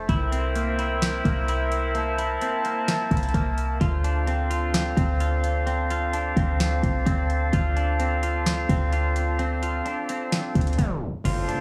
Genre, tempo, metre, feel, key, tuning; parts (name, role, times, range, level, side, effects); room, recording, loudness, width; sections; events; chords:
hip hop, atmospheric cloud-rap; 129 BPM; 4/4; half-time; D minor; A4 = 435 Hz
small flute group; sustained chords; 0.0-11.6 s; D4 to A5; -31 LUFS; equal; sidechain pumping
semi-hollow electric guitar; arpeggios; 0.0-11.6 s; Bb3 to F4; -32 LUFS; equal; subtle chorus, low-pass filter, digital delay
clean 808-style bass; bass; 0.0-11.6 s; F1 to D2; -27 LUFS; equal
booming analog drum machine; drums; 0.1-11.6 s; crash cymbal, hi-hat, kick drum, snare drum; -30 LUFS; equal
impact; sound effects; 11.3-11.6 s; -33 LUFS; equal
light reverb; tape stop, studio reverb; -24 LUFS; mono
0.0-11.3 A section
tape stop 10.8-11.3; impact 11.3-11.6
0.1 C7; 3.8 Dm7